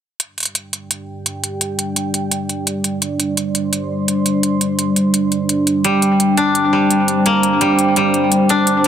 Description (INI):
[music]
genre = half-time drum and bass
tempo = 170 BPM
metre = 4/4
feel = swing 60% on 16ths, half-time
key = G minor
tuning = A4 = 440 Hz
[part]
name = dark analog pad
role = sustained chords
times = 1.0-8.9 s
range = G3 to C6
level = -17 LUFS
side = equal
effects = chorus
[part]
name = electronic hi-hat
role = drums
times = 0.2-8.9 s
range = none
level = -19 LUFS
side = right 1 dB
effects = none
[part]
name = koto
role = arpeggios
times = 5.8-8.9 s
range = G3 to D4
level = -15 LUFS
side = equal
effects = dub echo
[sound]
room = moderate echo chamber reverb, RT60 2.1 s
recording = dense, heavily limited modern master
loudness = -14 LUFS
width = side -9 dB against mid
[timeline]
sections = 0.2-8.9 A section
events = none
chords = 0.2 G5